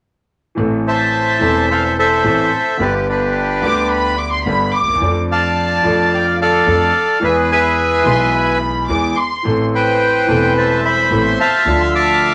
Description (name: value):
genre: tango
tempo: 108 BPM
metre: 4/4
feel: rubato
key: A minor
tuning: A4 = 440 Hz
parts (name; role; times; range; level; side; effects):
- clear concert grand piano; accompaniment; 0.6-12.3 s; E1 to A4; -21 LUFS; equal; none
- upright bass; bass; 0.6-12.3 s; E1 to F2; -26 LUFS; equal; none
- bandoneon; melody; 0.9-12.3 s; D4 to D6; -16 LUFS; equal; none
- warm studio violin section; second line; 3.6-9.6 s; B5 to D6; -21 LUFS; equal; none
room: wet studio reverb, RT60 0.5 s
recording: none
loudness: -15 LUFS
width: mono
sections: 0.6-12.3 A section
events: none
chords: 0.6 Am; 2.8 G; 5.0 Dm/F; 7.2 E; 9.4 Amadd9; 11.7 Dmadd9